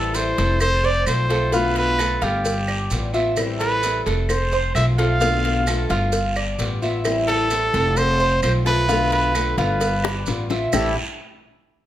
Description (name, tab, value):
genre	latin, Cuban son and guajira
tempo	130 BPM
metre	4/4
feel	straight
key	A minor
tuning	A4 = 440 Hz
part	warm trumpet	melody	0.0-10.9 s	G4 to F5	-22 LUFS	right 1 dB	none
part	fingerpicked old ladder-braced acoustic guitar	accompaniment	0.0-10.9 s	A2 to F4	-26 LUFS	left 5 dB	none
part	Cuban tres	arpeggios	0.0-11.0 s	A3 to E5	-25 LUFS	right 3 dB	none
part	upright bass	bass	0.0-10.9 s	F1 to B1	-23 LUFS	equal	none
part	cowbell and bongos	percussion	0.1-10.8 s	none	-29 LUFS	left 2 dB	none
part	guiro	percussion	0.1-10.8 s	none	-33 LUFS	right 3 dB	none
part	maracas	percussion	0.1-10.8 s	none	-35 LUFS	right 4 dB	none
part	claves	percussion	0.6-10.8 s	none	-32 LUFS	right 2 dB	none
room	light reverb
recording	none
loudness	-18 LUFS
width	side -12 dB against mid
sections	0.0-10.7 A section; 10.7-11.9 B section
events	drum fill 10.0-10.7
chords	0.0 Am7; 0.6 F; 1.5 Bm7b5; 2.5 G7; 3.4 Am7; 4.3 F; 5.2 Bm7b5; 6.1 G7; 7.0 Am7; 8.0 F; 8.9 Bm7b5; 9.8 G7; 10.7 Am7